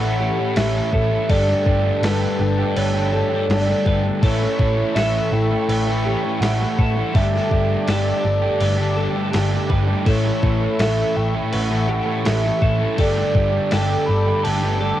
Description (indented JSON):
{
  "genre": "rock, shoegaze and dream pop",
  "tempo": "82 BPM",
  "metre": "4/4",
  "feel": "straight",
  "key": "A mixolydian",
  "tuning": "A4 = 441 Hz",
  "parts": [
    { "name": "hollow clarinet-like synth lead", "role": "melody", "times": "0.0-15.0 s", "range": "B4 to B5", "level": "-24 LUFS", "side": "right 2 dB", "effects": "chorus, cassette tape, analog delay" },
    { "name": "brassy analog pad", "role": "sustained chords", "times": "0.0-15.0 s", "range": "D4 to D6", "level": "-28 LUFS", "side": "left 1 dB", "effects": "chorus" },
    { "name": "twelve-string electric guitar", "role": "arpeggios", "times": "0.0-15.0 s", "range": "G4 to B4", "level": "-28 LUFS", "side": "left 2 dB", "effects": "wide subtle chorus, analog delay" },
    { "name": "crunchy overdriven guitar", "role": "riff", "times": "0.0-15.0 s", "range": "G2 to A3", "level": "-29 LUFS", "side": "left 2 dB", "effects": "none" },
    { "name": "overdriven semi-hollow guitar", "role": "riff", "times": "0.0-15.0 s", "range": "A2 to A4", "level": "-27 LUFS", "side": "right 10 dB", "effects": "reverse reverb" },
    { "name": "thick fuzz guitar", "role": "riff", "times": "0.0-15.0 s", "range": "G2 to A3", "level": "-27 LUFS", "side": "left 6 dB", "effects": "distortion, lush chorus" },
    { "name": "hollow-body short-scale picked electric bass", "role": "bass", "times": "0.0-14.9 s", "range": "G1 to A1", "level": "-22 LUFS", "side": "equal", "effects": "none" },
    { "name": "clean 12-bit digital drum machine", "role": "drums", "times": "0.6-14.6 s", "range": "crash cymbal, kick drum, snare drum", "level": "-24 LUFS", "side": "equal", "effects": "overdrive, cassette tape" }
  ],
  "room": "little or no reverb",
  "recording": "home recording on cassette",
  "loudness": "-17 LUFS",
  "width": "side -12 dB against mid",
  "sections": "0.0-15.0 A section",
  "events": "none",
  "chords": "0.0 Aadd9; 1.3 Gsus2; 4.2 Aadd9; 7.2 Gsus2; 10.1 Aadd9; 13.0 Gsus2",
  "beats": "0.56 | 1.30 2.03 2.77 3.50 | 4.23 4.96 5.69 6.42 | 7.15 7.88 8.61 9.34 | 10.07 10.80 11.53 12.26 | 12.99 13.72 14.45"
}